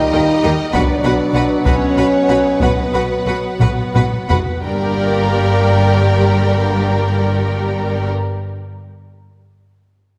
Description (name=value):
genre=cinematic, epic orchestral film score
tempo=57-67 BPM (dotted quarters)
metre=6/8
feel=straight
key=unclear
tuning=A4 = 440 Hz
part: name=warm symphonic violin section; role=melody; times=0.0-8.1 s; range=B4 to G5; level=-29 LUFS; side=equal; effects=none
part: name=clear French horn section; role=sustained chords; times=0.0-8.1 s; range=G3 to Eb4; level=-22 LUFS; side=equal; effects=none
part: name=warm symphonic string section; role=sustained chords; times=0.0-8.1 s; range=B3 to G5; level=-28 LUFS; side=equal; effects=none
part: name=warm trombone section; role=sustained chords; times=0.0-8.1 s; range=B2 to Bb3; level=-26 LUFS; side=equal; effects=none
part: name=warm symphonic violin section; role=second line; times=0.1-8.1 s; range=Bb4 to B5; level=-26 LUFS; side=equal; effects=none
part: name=rich studio viola section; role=accompaniment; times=0.1-8.1 s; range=F#4 to B4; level=-26 LUFS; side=equal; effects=none
part: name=rich symphonic cello section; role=bass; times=0.1-8.1 s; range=G2 to Eb3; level=-24 LUFS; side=equal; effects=none
part: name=rich symphonic double bass section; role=bass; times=0.1-8.1 s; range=G1 to Eb2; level=-22 LUFS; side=equal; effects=none
part: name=taiko ensemble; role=drums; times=0.7-4.6 s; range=none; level=-21 LUFS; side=equal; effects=none
room=wet scoring stage reverb, RT60 2.0 s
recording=none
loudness=-16 LUFS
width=mono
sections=0.0-4.6 A section; 4.6-8.8 B section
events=slowing down 0.0-4.6; drum fill 3.6-4.6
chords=0.0 Eb; 0.7 Bm; 4.6 Gm